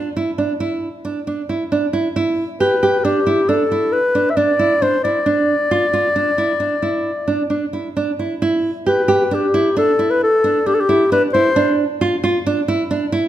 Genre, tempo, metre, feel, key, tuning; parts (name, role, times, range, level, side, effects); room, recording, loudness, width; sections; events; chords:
contemporary instrumental, contemporary; 134 BPM; 7/4; straight; A4 = 440 Hz
nylon-string guitar; arpeggios; 0.0-13.3 s; D4 to G4; -18 LUFS; right 3 dB
mellow clarinet; melody; 2.6-11.8 s; G4 to E5; -16 LUFS; left 2 dB
moderate recital hall reverb, RT60 1.6 s; -15 LUFS; side -12 dB against mid
0.0-8.4 A section; 8.4-13.3 A section
0.0 N.C.; 2.2 Dsus2; 5.3 N.C.; 8.4 Em7/D; 11.6 Dm